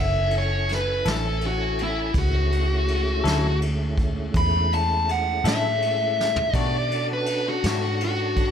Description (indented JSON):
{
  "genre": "slow blues",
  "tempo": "55 BPM (dotted quarters)",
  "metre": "12/8",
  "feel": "straight",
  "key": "F# minor",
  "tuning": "A4 = 440 Hz",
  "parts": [
    { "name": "dark smooth lead guitar", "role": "melody", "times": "0.0-8.5 s", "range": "E4 to B5", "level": "-24 LUFS", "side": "left 1 dB", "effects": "overdrive, plate reverb" },
    { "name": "tonewheel organ", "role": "sustained chords", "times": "0.0-8.5 s", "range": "D#3 to G#5", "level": "-32 LUFS", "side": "right 1 dB", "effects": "chorus vibrato, slow rotary speaker" },
    { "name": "vintage muted fingered electric bass", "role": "bass", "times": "0.0-8.5 s", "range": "F#1 to B2", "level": "-25 LUFS", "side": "equal", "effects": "none" },
    { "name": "vintage brush drum kit", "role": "drums", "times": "0.3-8.5 s", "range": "kick drum, ride cymbal, snare drum, toms", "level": "-28 LUFS", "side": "equal", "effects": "none" },
    { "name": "semi-hollow electric guitar", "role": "accompaniment", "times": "1.1-7.9 s", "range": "B2 to A4", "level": "-29 LUFS", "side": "left 8 dB", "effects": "tremolo" }
  ],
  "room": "light reverb",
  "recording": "none",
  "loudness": "-21 LUFS",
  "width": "side -8 dB against mid",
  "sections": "0.0-8.5 A section",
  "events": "lead electric guitar solo 0.0-8.5; drum fill 6.2-6.5",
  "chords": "0.0 F#m7; 6.5 Bm7"
}